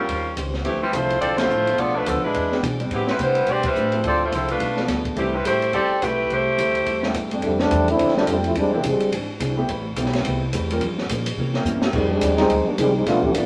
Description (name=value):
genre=jazz, big band swing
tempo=213 BPM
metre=4/4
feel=swing 60% on 8ths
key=unclear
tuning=A4 = 440 Hz
part: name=warm saxophone section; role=melody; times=0.0-7.2 s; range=E3 to D5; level=-23 LUFS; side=equal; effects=none
part: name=warm grand piano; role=accompaniment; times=0.0-13.2 s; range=F2 to Bb4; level=-30 LUFS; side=equal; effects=none
part: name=upright bass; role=bass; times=0.0-13.5 s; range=G1 to C3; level=-30 LUFS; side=equal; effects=none
part: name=vintage hollow-body jazz guitar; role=accompaniment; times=0.1-13.5 s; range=G2 to C5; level=-33 LUFS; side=equal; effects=none
part: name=open jazz drum kit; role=drums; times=0.1-13.4 s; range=crash cymbal, hi-hat, kick drum, ride cymbal, snare drum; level=-31 LUFS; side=equal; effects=none
part: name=mellow trombone section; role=second line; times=7.4-9.1, 11.9-13.5 s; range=B#2 to G4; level=-21 LUFS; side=equal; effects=none
room=wet studio reverb, RT60 0.6 s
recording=none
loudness=-21 LUFS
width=mono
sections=0.0-7.4 A section; 7.4-13.5 B section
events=band accent 1.4, 3.6; trombone section solo 7.4-13.5; drum fill 11.7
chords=0.1 Eb13; 0.7 Dm9; 1.8 Bm7b5; 2.3 E7b13; 2.9 Am11; 4.0 Dm9; 4.6 G9; 5.2 C6; 7.4 F69; 8.6 E7alt; 9.7 Am9; 10.8 Gm7b5; 11.4 C7b9; 11.9 Fm9